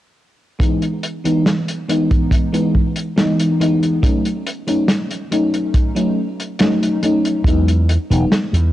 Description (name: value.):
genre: vaporwave.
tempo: 70 BPM.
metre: 4/4.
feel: straight.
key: E major.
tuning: A4 = 440 Hz.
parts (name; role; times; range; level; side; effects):
FM electric piano with soft pad layer; accompaniment; 0.6-8.3 s; E3 to D#4; -17 LUFS; equal; wide subtle chorus, tape echo.
kick drum; drums; 0.6-7.6 s; none; -16 LUFS; equal; vintage 12-bit sampler grit.
warm soul drum kit; drums; 0.6-8.7 s; hi-hat, snare drum; -20 LUFS; equal; vintage 12-bit sampler grit.
slap bass with an envelope filter; bass; 7.4-8.7 s; E1 to E2; -14 LUFS; equal; none.
room: moderate concert hall reverb, RT60 2.2 s.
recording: dry, gritty hardware recording, cassette tape.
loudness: -15 LUFS.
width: side -14 dB against mid.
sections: 0.6-8.7 A section.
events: none.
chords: 0.6 Emaj7; 4.0 F#m6; 7.5 Emaj7.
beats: | 0.60 1.46 2.32 3.17 | 4.03 4.89 5.75 6.60 | 7.46 8.32.